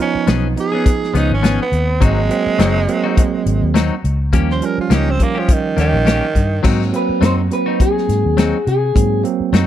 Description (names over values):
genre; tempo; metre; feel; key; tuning
straight-eighth soul blues; 104 BPM; 4/4; swing 56% on 16ths; Ab mixolydian; A4 = 440 Hz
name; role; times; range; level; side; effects
growling tenor saxophone; second line; 0.0-6.6 s; Eb3 to C5; -20 LUFS; right 4 dB; none
bell-like tine electric piano; accompaniment; 0.0-9.7 s; F3 to Eb4; -20 LUFS; moving between right 4 dB and right 10 dB; auto-pan
vintage muted fingered electric bass; bass; 0.1-9.7 s; Gb1 to C3; -17 LUFS; left 1 dB; none
clean electric guitar; stabs; 0.3-9.7 s; F3 to Ab4; -22 LUFS; left 7 dB; spring reverb
warm soul drum kit; drums; 0.3-9.7 s; crash cymbal, hi-hat, kick drum, snare drum; -16 LUFS; left 1 dB; none
electric guitar through a small old amp; melody; 7.0-9.2 s; Ab4 to C5; -19 LUFS; left 3 dB; none
room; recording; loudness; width
small room ambience; none; -13 LUFS; side -11 dB against mid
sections
0.0-6.6 A section; 6.6-9.7 B section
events
tenor saxophone solo 0.0-6.6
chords
0.0 Db7; 2.0 Ab7; 4.3 Eb7; 6.6 Ab7